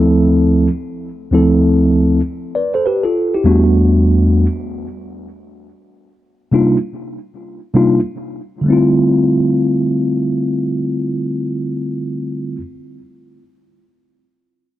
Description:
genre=hip hop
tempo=free time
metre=none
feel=none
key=D dorian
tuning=A4 = 437 Hz
part: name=mellow tine electric piano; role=solo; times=0.0-12.6 s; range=D2 to D5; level=-13 LUFS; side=equal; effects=slow stereo tremolo, analog delay
room=wet studio reverb, RT60 0.6 s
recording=dark, warm production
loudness=-13 LUFS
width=side -14 dB against mid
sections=0.0-8.7 A section; 8.7-11.1 B section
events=none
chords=0.0 Dm9; 3.5 Em11; 6.2 Cm11; 8.7 Dm11

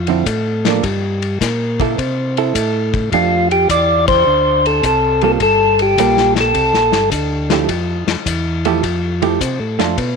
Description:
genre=soul jazz organ trio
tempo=105 BPM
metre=4/4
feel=swing 68% on 8ths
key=F major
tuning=A4 = 440 Hz
part: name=tonewheel organ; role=bass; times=0.0-10.2 s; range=G1 to C3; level=-19 LUFS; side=equal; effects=stopped rotary speaker
part: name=hollow-body jazz guitar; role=accompaniment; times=0.1-10.0 s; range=D3 to A4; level=-20 LUFS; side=right 12 dB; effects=none
part: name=warm soul drum kit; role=drums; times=0.1-10.2 s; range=hi-hat, kick drum, ride cymbal, snare drum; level=-22 LUFS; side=left 7 dB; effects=none
part: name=percussive tonewheel organ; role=melody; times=3.1-7.1 s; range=F4 to D5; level=-13 LUFS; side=left 1 dB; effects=slow rotary speaker, tape echo
room=moderate echo chamber reverb, RT60 2.0 s, studio reverb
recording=1960s-style stereo with parts hard left and right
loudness=-13 LUFS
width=side -5 dB against mid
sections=0.0-10.2 A section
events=band accent 4.0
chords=0.0 Dm9; 0.8 Gm; 2.0 C6; 3.1 F69; 4.3 Dm7; 5.4 Gm9; 6.5 C13; 7.7 Fmaj9

